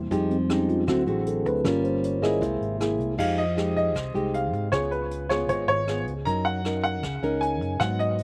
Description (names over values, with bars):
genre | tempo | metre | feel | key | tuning
bossa nova | 156 BPM | 4/4 | straight | F minor | A4 = 441 Hz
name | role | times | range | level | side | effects
mellow tine electric piano | accompaniment | 0.0-3.2 s | F#3 to E5 | -28 LUFS | equal | none
nylon-string guitar | accompaniment | 0.0-8.2 s | Ab2 to Bb4 | -30 LUFS | equal | slapback echo
fingered electric bass | bass | 0.0-8.2 s | G1 to Ab2 | -33 LUFS | equal | none
vintage brush drum kit | drums | 0.1-8.2 s | crash cymbal, hi-hat, kick drum, rim click | -39 LUFS | equal | none
warm baby grand piano | melody | 3.2-8.2 s | Cb5 to Bb5 | -29 LUFS | equal | none
room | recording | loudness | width
little or no reverb | recorded outdoors, with no room sound | -25 LUFS | mono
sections
0.0-3.2 A section; 3.2-8.2 B section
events
tine electric piano solo 0.0-3.2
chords
0.1 Fm9; 0.9 D7; 1.6 Gm7b5; 2.4 Caug7; 3.2 Fm9; 4.7 Db7; 6.3 Gb6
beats
| 0.11 0.50 0.88 1.26 | 1.65 2.03 2.41 2.80 | 3.18 3.57 3.95 4.34 | 4.72 5.11 5.49 5.88 | 6.26 6.64 7.03 7.42 | 7.80 8.19